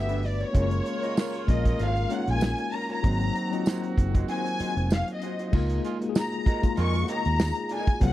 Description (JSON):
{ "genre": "lush 1970s-style soul", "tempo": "96 BPM", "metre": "4/4", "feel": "swing 54% on 16ths", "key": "Db major", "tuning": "A4 = 441 Hz", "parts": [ { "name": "warm studio violin section", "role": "melody", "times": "0.0-8.1 s", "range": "Db5 to Db6", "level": "-31 LUFS", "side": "left 2 dB", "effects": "tape echo" }, { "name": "tine electric piano", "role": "accompaniment", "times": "0.0-8.1 s", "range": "F3 to Ab4", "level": "-30 LUFS", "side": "left 4 dB", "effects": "overdrive, medium stereo tremolo" }, { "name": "mellow French horn section", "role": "sustained chords", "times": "0.0-8.1 s", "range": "C3 to B4", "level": "-40 LUFS", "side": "left 2 dB", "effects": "none" }, { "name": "warm horn section", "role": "stabs", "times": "0.0-7.2 s", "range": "Bb2 to G4", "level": "-38 LUFS", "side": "right 9 dB", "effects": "none" }, { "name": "vintage muted fingered electric bass", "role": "bass", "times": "0.0-8.1 s", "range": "F1 to F2", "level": "-26 LUFS", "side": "equal", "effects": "none" }, { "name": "electric guitar through a small old amp", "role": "riff", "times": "0.1-8.1 s", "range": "D4 to F5", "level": "-38 LUFS", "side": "right 6 dB", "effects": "none" }, { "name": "warm soul drum kit", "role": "drums", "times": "0.1-8.1 s", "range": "crash cymbal, hi-hat, kick drum, snare drum", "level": "-24 LUFS", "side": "equal", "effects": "none" }, { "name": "tambourine", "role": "percussion", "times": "1.2-7.6 s", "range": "none", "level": "-45 LUFS", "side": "right 14 dB", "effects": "none" } ], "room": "little or no reverb", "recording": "dry, close 1970s-style studio recording", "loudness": "-24 LUFS", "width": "side -14 dB against mid", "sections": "0.0-5.5 A section; 5.5-8.1 B section", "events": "violin section solo 0.0-5.5", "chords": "0.0 Gmaj7; 0.5 Gbmaj7; 3.0 Ab7; 5.5 Db69" }